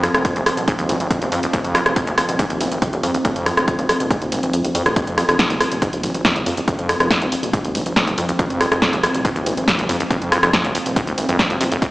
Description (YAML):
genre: driving peak-time techno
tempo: 140 BPM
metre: 4/4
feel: straight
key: F minor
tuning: A4 = 441 Hz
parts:
  - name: acid bass, saw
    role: riff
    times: 0.0-11.9 s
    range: Eb2 to C3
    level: -24 LUFS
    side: equal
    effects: sidechain pumping, tape echo
  - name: gritty driven synth bass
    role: bass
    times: 0.0-11.9 s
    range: Eb1 to F2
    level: -24 LUFS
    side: equal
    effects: sidechain pumping
  - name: deep dark ambient pad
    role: drone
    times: 0.0-11.9 s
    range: F3 to C4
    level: -26 LUFS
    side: equal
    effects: chorus, built-in reverb, sidechain pumping
  - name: techno drum kit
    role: drums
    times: 0.0-11.9 s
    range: hi-hat, rim click, snare drum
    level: -19 LUFS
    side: equal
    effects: none
  - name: electronic kick drum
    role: drums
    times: 0.2-11.9 s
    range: none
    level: -22 LUFS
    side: equal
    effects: none
room: moderate plate reverb, RT60 2.2 s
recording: played on a big sound system in a bare room, stone room reverb, small speaker sound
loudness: -16 LUFS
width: side -19 dB against mid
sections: 0.0-11.9 A section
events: kick drops out 4.5-5.0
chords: 0.0 F5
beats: 0.25 0.68 1.11 | 1.53 1.96 2.39 2.82 | 3.25 3.68 4.11 4.54 | 4.96 5.39 5.82 6.25 | 6.68 7.11 7.54 7.96 | 8.39 8.82 9.25 9.68 | 10.11 10.54 10.96 11.39 | 11.82